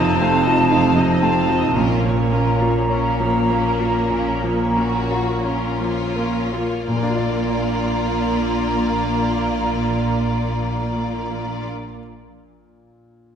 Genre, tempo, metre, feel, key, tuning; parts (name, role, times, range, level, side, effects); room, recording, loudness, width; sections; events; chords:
classical, romantic movement for piano and orchestra; 41-62 BPM; 4/4; rubato; A4 = 441 Hz
bright baby grand piano; melody; 0.0-13.4 s; F2 to D5; -24 LUFS; left 1 dB
rich studio violin section; melody; 0.0-11.7 s; Bb4 to F5; -32 LUFS; left 3 dB
clear studio violin section; second line; 0.0-11.7 s; Bb3 to Gb4; -30 LUFS; left 3 dB
hollow concert flute; second line; 0.0-11.7 s; A5 to Bb5; -24 LUFS; equal
clear studio viola section; accompaniment; 0.0-11.7 s; A3 to Db4; -27 LUFS; right 2 dB
mellow French horn section; sustained chords; 0.0-11.7 s; Bb3 to Eb4; -27 LUFS; equal
rich studio cello section; bass; 0.0-11.7 s; F2 to Bb2; -26 LUFS; right 1 dB
rich studio double bass section; bass; 0.0-11.7 s; F1 to Bb1; -26 LUFS; right 3 dB
timpani; percussion; 1.8-11.7 s; Bb2; -29 LUFS; left 2 dB
wet scoring stage reverb, RT60 1.8 s; heard from further back in the room; -17 LUFS; side -8 dB against mid
0.0-6.9 A section; 6.9-12.6 B section
slowing down 0.0-6.9
0.0 F7; 1.8 Bbm; 6.9 Bb